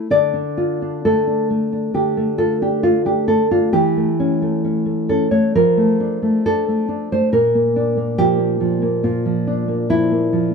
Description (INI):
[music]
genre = romantic piece for solo classical guitar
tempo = 64-71 BPM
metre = 4/4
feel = rubato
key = D minor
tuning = A4 = 441 Hz
[part]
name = nylon-string guitar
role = solo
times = 0.0-10.5 s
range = Bb2 to D5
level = -15 LUFS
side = equal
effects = none
[sound]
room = moderate small room ambience, RT60 0.5 s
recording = band playing live in one room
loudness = -15 LUFS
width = side -5 dB against mid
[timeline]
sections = 0.1-10.5 A section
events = none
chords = 0.1 Dm; 3.7 A7/E; 5.5 Dm/F; 7.3 Bb